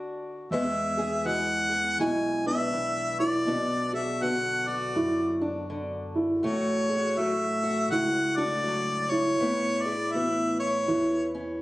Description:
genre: acoustic folk duo or small band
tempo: 81 BPM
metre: 4/4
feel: swing 62% on 8ths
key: unclear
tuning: A4 = 442 Hz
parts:
  - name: fingerpicked acoustic archtop guitar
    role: accompaniment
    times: 0.0-11.6 s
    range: E2 to G#4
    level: -31 LUFS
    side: left 1 dB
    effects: none
  - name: warm harmonica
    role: melody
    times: 0.5-11.3 s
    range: C#5 to G#5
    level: -28 LUFS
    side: equal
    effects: none
  - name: fingered electric bass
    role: bass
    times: 0.5-11.6 s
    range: A1 to F#2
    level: -39 LUFS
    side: equal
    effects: none
  - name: felt-muted upright piano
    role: arpeggios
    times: 1.0-11.3 s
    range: D4 to G#4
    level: -29 LUFS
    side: right 1 dB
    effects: none
room: light reverb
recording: recorded on a phone in the room, club reverb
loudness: -24 LUFS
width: side -17 dB against mid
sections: 0.5-11.6 A section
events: none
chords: 0.0 D; 0.5 Bm; 6.4 F#m/A; 9.4 Aadd9

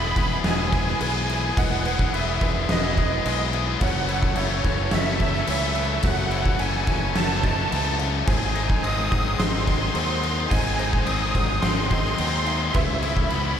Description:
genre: post-rock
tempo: 107 BPM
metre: 4/4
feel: straight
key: unclear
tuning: A4 = 442 Hz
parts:
  - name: musette accordion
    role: melody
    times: 0.0-13.6 s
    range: C#5 to D#6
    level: -28 LUFS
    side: right 6 dB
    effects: digital delay
  - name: deep dark ambient pad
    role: sustained chords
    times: 0.1-13.6 s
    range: D#4 to G#5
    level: -38 LUFS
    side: right 1 dB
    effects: none
  - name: felt-muted upright piano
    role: arpeggios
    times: 0.0-13.6 s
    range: B4 to E5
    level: -38 LUFS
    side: right 6 dB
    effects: slapback echo, digital delay
  - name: twangy electric guitar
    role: arpeggios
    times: 0.0-13.6 s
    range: F#2 to E4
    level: -33 LUFS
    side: left 2 dB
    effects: digital delay
  - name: distorted electric guitar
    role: riff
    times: 0.0-13.6 s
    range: F#2 to A4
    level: -28 LUFS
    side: left 13 dB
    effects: overdrive, slapback echo
  - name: growling fingered electric bass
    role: bass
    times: 0.0-13.6 s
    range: E1 to D#2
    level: -27 LUFS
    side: equal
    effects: overdrive
  - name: oversized low-tuned drum kit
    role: drums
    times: 0.2-13.4 s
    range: crash cymbal, kick drum, snare drum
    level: -24 LUFS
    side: equal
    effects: none
room: light reverb, small room reverb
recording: none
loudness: -20 LUFS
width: side -8 dB against mid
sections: 0.0-13.6 A section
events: none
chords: 0.0 Emaj7; 3.8 F#m7; 8.3 G#7; 12.7 C#m7

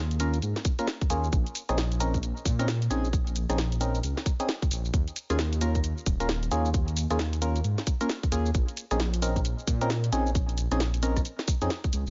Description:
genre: UK garage, two-step garage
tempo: 133 BPM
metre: 4/4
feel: swing 62% on 16ths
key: Bb minor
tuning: A4 = 440 Hz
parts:
  - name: dark detuned saw bass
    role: bass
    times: 0.0-12.1 s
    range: Eb1 to Bb2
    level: -30 LUFS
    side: equal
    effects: none
  - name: garage drum kit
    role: drums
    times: 0.1-12.1 s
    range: hi-hat, rim click, shaker, snare drum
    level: -35 LUFS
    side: equal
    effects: none
  - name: percussive organ stab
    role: stabs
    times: 0.2-11.7 s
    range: Bb3 to Bb4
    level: -34 LUFS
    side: equal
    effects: chorus, phaser, tape echo
  - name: electronic kick drum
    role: drums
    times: 0.7-11.9 s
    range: none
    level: -30 LUFS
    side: equal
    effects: none
room: light reverb, digital ambience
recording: nothing above 7.6 kHz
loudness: -28 LUFS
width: mono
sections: 0.0-12.1 A section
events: none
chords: 0.0 Eb7sus4; 1.3 Bbm11; 4.9 Eb7sus4; 8.5 Bbm11

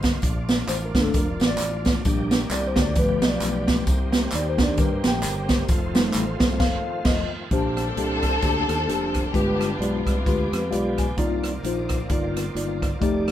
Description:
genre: uptempo gospel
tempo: 132 BPM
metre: 4/4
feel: swing 57% on 8ths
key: Bb major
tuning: A4 = 440 Hz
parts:
  - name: bright tonewheel organ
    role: sustained chords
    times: 0.0-13.3 s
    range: D3 to D5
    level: -35 LUFS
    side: right 2 dB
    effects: slow rotary speaker, overdrive, chorus vibrato
  - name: warm French horn section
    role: sustained chords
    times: 0.0-13.3 s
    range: Eb3 to Eb5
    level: -35 LUFS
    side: left 1 dB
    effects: none
  - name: fingered electric bass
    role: bass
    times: 0.0-13.3 s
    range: F1 to G2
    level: -28 LUFS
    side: equal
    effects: none
  - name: swinging big-band drum kit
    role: drums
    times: 0.0-13.3 s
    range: crash cymbal, hi-hat, kick drum, rim click, snare drum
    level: -23 LUFS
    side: right 1 dB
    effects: none
  - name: tambourine and handclaps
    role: percussion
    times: 0.0-6.5 s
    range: none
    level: -34 LUFS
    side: equal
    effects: none
  - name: mellow tine electric piano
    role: accompaniment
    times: 0.7-13.3 s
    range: G2 to Ab5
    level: -26 LUFS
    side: left 2 dB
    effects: medium stereo tremolo
  - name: warm studio string section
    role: melody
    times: 7.5-11.0 s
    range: Ab3 to A4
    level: -27 LUFS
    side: left 2 dB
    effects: none
room: light reverb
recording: band playing live in one room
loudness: -20 LUFS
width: side -12 dB against mid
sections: 0.0-7.5 A section; 7.5-13.3 B section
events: tine electric piano solo 0.0-7.5; band accent 6.6-7.5; tine electric piano fill 10.5-11.2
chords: 0.2 Bbmaj7; 2.1 Ebmaj7/Bb; 3.0 G7; 3.9 Cm7; 5.7 F7; 7.5 Bb69; 9.3 G7b9; 11.2 Cm11

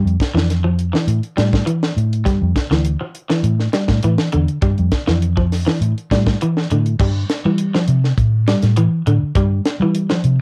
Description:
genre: afrobeat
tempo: 101 BPM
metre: 4/4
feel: straight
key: unclear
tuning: A4 = 440 Hz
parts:
  - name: electric guitar at the edge of break-up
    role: arpeggios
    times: 0.0-10.3 s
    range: D3 to G3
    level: -22 LUFS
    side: equal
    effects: subtle chorus, cassette tape
  - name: vintage muted fingered electric bass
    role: bass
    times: 0.0-10.4 s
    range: D2 to G3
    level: -19 LUFS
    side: equal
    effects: none
  - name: tight funk drum kit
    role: drums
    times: 0.1-10.4 s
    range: crash cymbal, hi-hat, kick drum, snare drum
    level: -22 LUFS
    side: equal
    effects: none
room: light reverb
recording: home recording on cassette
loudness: -17 LUFS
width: mono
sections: 0.0-7.0 A section; 7.0-10.4 B section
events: none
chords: 0.0 Fsus2; 1.1 A5; 2.3 G5; 3.4 A5; 4.6 Fsus2; 5.8 A5; 7.0 Cadd11/G; 8.2 A5; 9.3 Cadd11/G

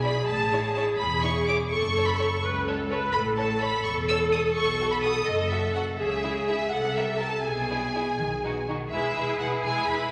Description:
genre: quick classical-period movement for string orchestra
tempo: 84 BPM (dotted quarters)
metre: 6/8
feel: straight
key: E major from 3.1 s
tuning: A4 = 439 Hz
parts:
  - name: rich symphonic violin section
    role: melody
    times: 0.0-10.1 s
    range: D#5 to E6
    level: -31 LUFS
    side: equal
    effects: none
  - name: warm symphonic violin section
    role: second line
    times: 0.0-10.1 s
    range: D#4 to D5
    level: -38 LUFS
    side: equal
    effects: none
  - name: rich studio viola section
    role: accompaniment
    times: 0.0-10.1 s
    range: G#3 to B4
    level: -30 LUFS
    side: equal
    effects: none
  - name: rich symphonic cello section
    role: bass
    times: 0.0-10.1 s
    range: C#2 to G#4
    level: -35 LUFS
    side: equal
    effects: none
  - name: rich symphonic double bass section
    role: bass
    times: 0.0-10.0 s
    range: E1 to C#2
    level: -38 LUFS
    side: equal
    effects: none
room: wet scoring stage reverb, RT60 1.7 s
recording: none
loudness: -26 LUFS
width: mono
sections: 0.0-8.9 A section; 8.9-10.1 B section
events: none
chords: 0.3 A; 1.7 F#m; 3.1 A; 4.6 B5; 6.0 C#m; 6.7 C5; 7.4 E/B; 8.2 B; 8.9 E

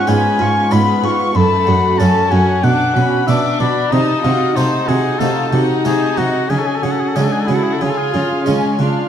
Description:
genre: classical, baroque-style concerto movement with solo episodes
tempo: 94 BPM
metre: 4/4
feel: straight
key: unclear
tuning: A4 = 441 Hz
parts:
  - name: rich chamber violin section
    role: melody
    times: 0.0-9.1 s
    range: E#5 to D6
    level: -28 LUFS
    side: left 1 dB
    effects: none
  - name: warm oboe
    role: melody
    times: 0.0-8.5 s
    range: Gb4 to C#6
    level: -19 LUFS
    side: left 3 dB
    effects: none
  - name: warm chamber violin section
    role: second line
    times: 0.0-9.1 s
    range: A3 to E#4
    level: -21 LUFS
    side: left 4 dB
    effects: none
  - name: dark chamber viola section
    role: accompaniment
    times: 0.0-9.1 s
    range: D4 to A4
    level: -22 LUFS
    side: right 4 dB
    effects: none
  - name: harpsichord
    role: accompaniment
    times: 0.0-9.1 s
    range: F#2 to F#4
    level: -20 LUFS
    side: equal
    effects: none
  - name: warm chamber cello section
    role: bass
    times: 0.1-8.9 s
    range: F#2 to C#3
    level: -18 LUFS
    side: right 2 dB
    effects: none
room: wet recital hall reverb, RT60 1.8 s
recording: dark, warm production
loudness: -13 LUFS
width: side -9 dB against mid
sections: 0.0-9.1 A section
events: none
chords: 0.0 C#7/G#; 1.4 F#m; 2.6 Bm; 3.9 Cdim7; 6.5 C#sus4; 7.8 C#

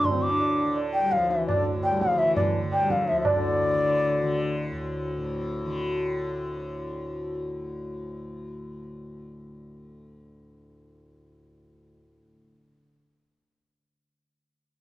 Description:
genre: indian classical, Hindustani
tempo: 170 BPM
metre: 4/4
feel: straight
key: D raga bhimpalasi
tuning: A4 = 440 Hz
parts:
  - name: bansuri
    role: melody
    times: 0.0-4.7 s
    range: D5 to D6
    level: -24 LUFS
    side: left 1 dB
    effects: none
  - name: warm duduk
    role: second line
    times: 0.0-4.7 s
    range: D3 to D4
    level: -30 LUFS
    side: left 3 dB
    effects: none
  - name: tanpura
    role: drone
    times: 0.0-12.8 s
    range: D2 to D3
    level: -31 LUFS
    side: left 1 dB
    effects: none
  - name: tabla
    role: percussion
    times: 0.0-3.4 s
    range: none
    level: -28 LUFS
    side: right 3 dB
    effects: none
room: moderate studio ambience, RT60 0.5 s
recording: worn, warbling old tape, cassette tape, warbly pitch drift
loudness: -24 LUFS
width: side -15 dB against mid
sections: 0.0-3.3 A section; 3.3-6.1 B section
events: none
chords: none

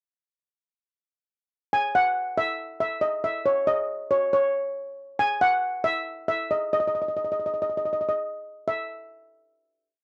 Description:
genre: calypso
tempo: 138 BPM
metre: 4/4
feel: straight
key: unclear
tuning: A4 = 437 Hz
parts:
  - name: steel pan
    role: solo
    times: 1.7-8.9 s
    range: C#5 to G#5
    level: -26 LUFS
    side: equal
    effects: none
room: light reverb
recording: dry, close 1970s-style studio recording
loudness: -26 LUFS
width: mono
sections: 1.7-8.7 verse; 8.7-10.0 final note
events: none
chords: none

